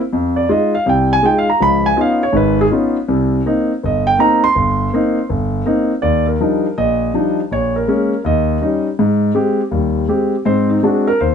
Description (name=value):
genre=solo jazz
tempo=162 BPM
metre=4/4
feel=swing 65% on 8ths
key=C minor, Eb major from 6.0 s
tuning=A4 = 440 Hz
part: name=warm concert grand piano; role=solo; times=0.1-11.3 s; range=G1 to C6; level=-13 LUFS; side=equal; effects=none
room=light reverb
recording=nothing above 10.4 kHz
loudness=-13 LUFS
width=side -7 dB against mid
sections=0.0-6.0 A section; 6.0-11.3 A section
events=grand piano solo 0.0-6.0, 6.0-11.3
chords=0.1 Fm7; 1.6 Db9; 3.1 Cm7; 6.0 Ebmaj9; 7.5 Bbm7; 8.2 Eb7; 9.0 Abmaj7; 10.5 Ab7#11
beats=| 0.11 0.48 0.85 1.22 | 1.59 1.96 2.33 2.70 | 3.07 3.44 3.80 4.17 | 4.54 4.91 5.28 5.65 | 6.02 6.39 6.76 7.13 | 7.50 7.87 8.24 8.61 | 8.97 9.35 9.71 10.08 | 10.45 10.82 11.19